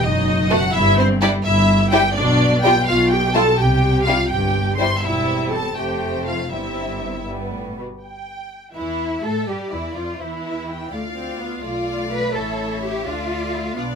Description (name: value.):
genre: quick classical-period movement for string orchestra.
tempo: 84 BPM (dotted quarters).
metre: 6/8.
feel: straight.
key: C major.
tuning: A4 = 439 Hz.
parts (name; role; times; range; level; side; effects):
rich studio violin section; melody; 0.0-14.0 s; C5 to C6; -23 LUFS; equal; none.
rich chamber viola section; accompaniment; 0.0-14.0 s; E3 to C5; -24 LUFS; equal; none.
rich chamber double bass section; bass; 0.0-14.0 s; E1 to A2; -25 LUFS; equal; none.
warm studio cello section; bass; 0.0-13.8 s; E2 to B4; -24 LUFS; equal; none.
warm chamber violin section; second line; 0.5-14.0 s; G3 to F5; -25 LUFS; left 1 dB; none.
room: light reverb.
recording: none.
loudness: -17 LUFS.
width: side -6 dB against mid.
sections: 0.0-8.0 A section; 8.0-14.0 B section.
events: none.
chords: 0.0 B/F# (rootless); 0.7 Em/G; 2.2 G7/B; 3.6 C5; 5.0 C/E; 5.8 F; 6.5 C/G; 7.3 G; 8.0 Emadd11; 9.5 G5; 10.2 Em; 10.9 Dm; 12.3 A7; 13.1 Dm.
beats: 0.03 | 0.74 1.45 | 2.16 2.88 | 3.59 4.30 | 5.02 5.75 | 6.51 7.27 | 8.03 8.76 | 9.48 10.20 | 10.92 11.63 | 12.35 13.06 | 13.77.